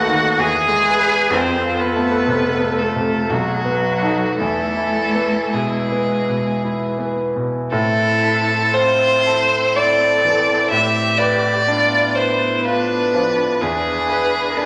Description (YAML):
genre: classical, slow romantic movement for piano quartet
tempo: 52-68 BPM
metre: 3/4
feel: rubato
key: A minor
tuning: A4 = 440 Hz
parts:
  - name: clear violin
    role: melody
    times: 0.0-14.7 s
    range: F#4 to G#5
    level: -21 LUFS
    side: equal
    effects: none
  - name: rich cello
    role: second line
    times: 0.0-14.7 s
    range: F#3 to B4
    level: -24 LUFS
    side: equal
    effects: none
  - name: clear concert grand piano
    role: accompaniment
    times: 0.0-14.7 s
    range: B1 to B4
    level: -23 LUFS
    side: equal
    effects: none
  - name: rich viola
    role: accompaniment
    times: 0.0-14.7 s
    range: B3 to B4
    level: -31 LUFS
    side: equal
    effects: none
room: wet recital hall reverb, RT60 1.8 s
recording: none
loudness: -18 LUFS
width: mono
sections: 0.0-7.7 A section; 7.7-14.7 B section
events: none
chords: 0.4 E; 1.3 F; 3.3 B7; 4.4 E; 7.7 Am; 10.7 Bdim/A; 13.6 E7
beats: 0.40 | 1.33 2.30 3.31 | 4.39 5.53 6.63 | 7.71 8.74 9.76 | 10.71 11.68 12.65 | 13.61 14.57